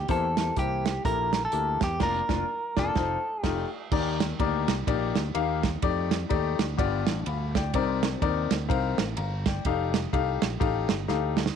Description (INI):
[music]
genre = uptempo gospel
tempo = 126 BPM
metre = 4/4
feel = swing 60% on 8ths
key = unclear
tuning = A4 = 441 Hz
[part]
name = clean electric guitar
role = melody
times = 0.0-3.7 s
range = G4 to Bb4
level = -28 LUFS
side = right 1 dB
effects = none
[part]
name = fingered electric bass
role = bass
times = 0.0-11.5 s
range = F1 to F2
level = -31 LUFS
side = right 1 dB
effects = none
[part]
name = warm baby grand piano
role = accompaniment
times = 0.1-11.4 s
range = G2 to B5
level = -29 LUFS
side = left 11 dB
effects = none
[part]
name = warm soul drum kit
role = drums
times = 0.1-11.6 s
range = crash cymbal, hi-hat, kick drum, ride cymbal, snare drum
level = -29 LUFS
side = right 5 dB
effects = none
[sound]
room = light reverb, studio reverb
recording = 1960s-style stereo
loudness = -24 LUFS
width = side -7 dB against mid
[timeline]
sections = 0.0-3.9 A section; 3.9-11.6 B section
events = band accent 2.0-3.9; drum fill 11.1-11.6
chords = 0.1 C7; 2.0 Bb/F; 3.0 F7; 3.9 Ebmaj7; 5.8 F13; 6.8 G7; 7.7 Cm9; 9.6 F9